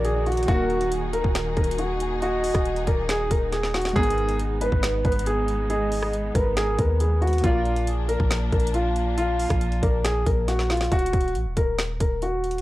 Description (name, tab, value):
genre	hip hop, trap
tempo	138 BPM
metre	4/4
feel	half-time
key	Eb harmonic minor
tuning	A4 = 439 Hz
part	dark concert grand piano	melody	0.0-12.6 s	F4 to Cb5	-25 LUFS	equal	none
part	warm velvety synth lead	second line	0.0-10.0 s	Ab4 to F5	-32 LUFS	right 1 dB	chorus, analog delay
part	warbly lo-fi synth keys	accompaniment	0.0-10.9 s	Eb3 to D5	-34 LUFS	left 1 dB	chorus
part	rich studio string section	sustained chords	0.0-10.9 s	Eb3 to Bb4	-35 LUFS	equal	none
part	warm 808-style bass	bass	0.0-12.6 s	Eb1 to Eb2	-26 LUFS	equal	none
part	trap drum kit	drums	0.0-12.6 s	finger snaps, hi-hat, kick drum, rim click, snare drum	-26 LUFS	equal	none
room	digital ambience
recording	dry, gritty hardware recording, cassette tape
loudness	-21 LUFS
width	side -16 dB against mid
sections	0.0-10.9 A section; 10.9-12.6 B section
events	drum fill 3.5-4.0, 10.5-10.9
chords	0.0 Ebm; 4.0 Abm; 7.4 Bb; 10.9 Ebm